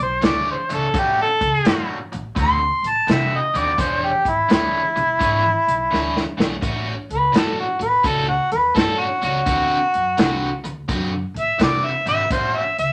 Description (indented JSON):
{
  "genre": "electric blues shuffle",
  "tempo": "84 BPM",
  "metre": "4/4",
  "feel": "swing 66% on 8ths",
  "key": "A mixolydian",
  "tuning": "A4 = 440 Hz",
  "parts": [
    { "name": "mellow harmonica", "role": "melody", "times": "0.0-12.9 s", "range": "E4 to C6", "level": "-21 LUFS", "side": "equal", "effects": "overdrive" },
    { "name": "upright bass", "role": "bass", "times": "0.0-12.9 s", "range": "E1 to C3", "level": "-30 LUFS", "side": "equal", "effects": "none" },
    { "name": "overdriven electric guitar", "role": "riff", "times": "0.2-12.6 s", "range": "A2 to C#5", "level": "-29 LUFS", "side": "equal", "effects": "phaser" },
    { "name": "vintage drum kit", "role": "drums", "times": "0.2-12.9 s", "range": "hi-hat, kick drum, snare drum", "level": "-24 LUFS", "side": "equal", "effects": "none" }
  ],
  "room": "moderate small room reverb, RT60 0.5 s",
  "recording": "none",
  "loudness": "-20 LUFS",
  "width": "mono",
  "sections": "0.0-6.6 A section; 6.6-12.9 B section",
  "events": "drum fill 5.9-6.6; harmonica solo 6.6-12.9",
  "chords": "0.0 E6; 0.9 A6; 2.4 D6; 3.8 E6; 6.6 A6; 9.5 D6; 12.3 A6",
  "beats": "0.23 | 0.94 1.65 2.36 3.07 | 3.79 4.50 5.21 5.92 | 6.63 7.34 8.05 8.76 | 9.47 10.18 10.89 11.60 | 12.31"
}